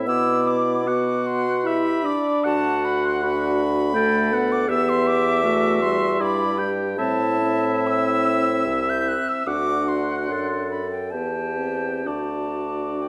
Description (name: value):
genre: classical, slow romantic movement for wind quintet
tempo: 61-83 BPM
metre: 3/4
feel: rubato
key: unclear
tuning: A4 = 441 Hz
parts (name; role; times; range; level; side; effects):
- clear oboe; second line; 0.0-13.1 s; D5 to G5; -29 LUFS; equal; none
- mellow French horn; accompaniment; 0.0-13.1 s; G3 to E4; -28 LUFS; equal; none
- warm clarinet; accompaniment; 0.0-13.1 s; E4 to A4; -30 LUFS; equal; none
- mellow bassoon; bass; 0.0-13.1 s; C2 to B2; -28 LUFS; equal; none
- concert flute; melody; 0.1-13.1 s; G5 to G6; -29 LUFS; equal; none
room: moderate recital hall reverb, RT60 1.6 s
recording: none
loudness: -22 LUFS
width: mono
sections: 0.0-13.1 A section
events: none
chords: 0.1 Bm; 2.5 Bm/D; 4.7 Em7; 7.0 Am; 9.5 D7; 11.1 Em; 12.1 D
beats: | 0.08 0.87 1.65 | 2.45 3.23 3.96 | 4.69 5.45 6.21 | 6.98 7.86 8.68 | 9.48 10.30 11.14 | 12.07 13.03